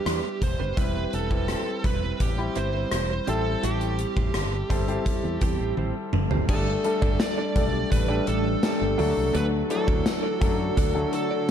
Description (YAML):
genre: 1980s-style pop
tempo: 84 BPM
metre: 4/4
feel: straight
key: G major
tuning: A4 = 440 Hz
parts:
  - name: smooth overdriven lead guitar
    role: melody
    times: 0.0-11.5 s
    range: G4 to D5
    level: -30 LUFS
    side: right 4 dB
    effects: tube saturation, ping-pong delay
  - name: clear concert grand piano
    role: accompaniment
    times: 0.0-11.5 s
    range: E3 to B5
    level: -29 LUFS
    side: left 4 dB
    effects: none
  - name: direct-recorded clean electric guitar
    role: riff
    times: 0.0-11.5 s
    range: G3 to D5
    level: -35 LUFS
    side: right 8 dB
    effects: lush chorus
  - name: fretless electric bass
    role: bass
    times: 0.1-11.0 s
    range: E1 to F#2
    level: -28 LUFS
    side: equal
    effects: ensemble chorus
  - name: gated 80s drum kit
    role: drums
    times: 0.1-11.5 s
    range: crash cymbal, hi-hat, kick drum, rim click, snare drum, tambourine, toms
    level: -26 LUFS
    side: equal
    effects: none
  - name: ethereal airy pad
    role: sustained chords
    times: 7.5-11.5 s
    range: D3 to A4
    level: -32 LUFS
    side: left 1 dB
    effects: ensemble chorus, built-in reverb
room: light reverb, studio ambience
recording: dark, warm production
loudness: -22 LUFS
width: side -9 dB against mid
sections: 0.0-6.5 A section; 6.5-11.5 B section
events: drum fill 5.8-6.5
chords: 0.0 Em7; 0.8 Cmaj7/E; 3.3 Am7; 6.5 Gsus2; 9.0 D